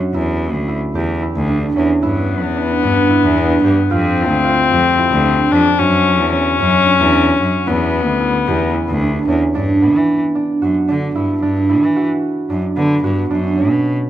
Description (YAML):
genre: contemporary instrumental, chamber music in an uneven meter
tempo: 223 BPM (eighths)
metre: 7/8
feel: straight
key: G lydian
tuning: A4 = 438 Hz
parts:
  - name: concert harp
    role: arpeggios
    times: 0.0-14.1 s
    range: B3 to G4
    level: -17 LUFS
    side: right 2 dB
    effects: none
  - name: rich cello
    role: bass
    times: 0.1-14.0 s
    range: D2 to E3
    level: -18 LUFS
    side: equal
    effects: none
  - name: warm viola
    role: second line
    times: 2.0-9.3 s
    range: B3 to D4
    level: -15 LUFS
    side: left 6 dB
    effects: none
room: light reverb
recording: close, detailed microphones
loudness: -13 LUFS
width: side -12 dB against mid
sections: 0.0-9.5 A section; 9.5-14.1 B section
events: none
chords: 0.1 Em7; 2.0 G; 3.9 Fsus2; 5.8 F#5; 7.7 Em7; 9.5 Gmaj7; 13.3 Dmaj7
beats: | 0.14 0.41 0.68 0.95 1.22 1.49 1.75 | 2.02 2.29 2.56 2.83 3.10 3.37 3.64 | 3.90 4.17 4.44 4.71 4.98 5.25 5.52 | 5.79 6.05 6.32 6.59 6.86 7.13 7.40 | 7.66 7.93 8.20 8.47 8.74 9.01 9.28 | 9.54 9.81 10.08 10.35 10.62 10.89 11.15 | 11.42 11.69 11.96 12.23 12.50 12.77 13.03 | 13.30 13.57 13.84